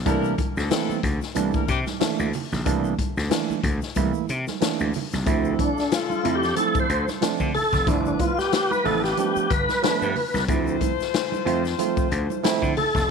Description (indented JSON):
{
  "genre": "funk",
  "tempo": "92 BPM",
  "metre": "4/4",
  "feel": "swing 56% on 16ths",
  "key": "D dorian",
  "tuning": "A4 = 435 Hz",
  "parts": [
    { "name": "gritty slap bass", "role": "bass", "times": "0.0-13.1 s", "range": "F1 to D3", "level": "-26 LUFS", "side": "left 1 dB", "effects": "overdrive" },
    { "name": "warm horn section", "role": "second line", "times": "0.1-12.7 s", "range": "B3 to C5", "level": "-31 LUFS", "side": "left 14 dB", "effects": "none" },
    { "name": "barky tine electric piano", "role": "stabs", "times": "0.1-13.1 s", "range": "E3 to F4", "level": "-27 LUFS", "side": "right 13 dB", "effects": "none" },
    { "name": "swinging big-band drum kit", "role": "drums", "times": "0.1-13.1 s", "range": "hi-hat, kick drum, snare drum", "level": "-26 LUFS", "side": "left 4 dB", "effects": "none" },
    { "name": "egg shaker", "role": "percussion", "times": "0.1-13.1 s", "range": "none", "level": "-45 LUFS", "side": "left 18 dB", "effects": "none" },
    { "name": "congas", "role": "percussion", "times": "0.4-13.1 s", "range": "none", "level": "-34 LUFS", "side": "right 10 dB", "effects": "none" },
    { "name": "tonewheel organ", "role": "melody", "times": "5.6-13.1 s", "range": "D4 to C5", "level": "-23 LUFS", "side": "equal", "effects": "overdrive, chorus vibrato, slow rotary speaker, slapback echo" }
  ],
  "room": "light reverb, small room ambience",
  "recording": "1960s-style stereo with parts hard left and right",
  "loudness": "-21 LUFS",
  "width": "side -5 dB against mid",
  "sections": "0.0-5.3 A section; 5.3-13.1 B section",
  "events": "tonewheel organ solo 5.3-13.1",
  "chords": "0.1 C13; 5.3 Dm7; 7.9 G13; 10.5 Dm7"
}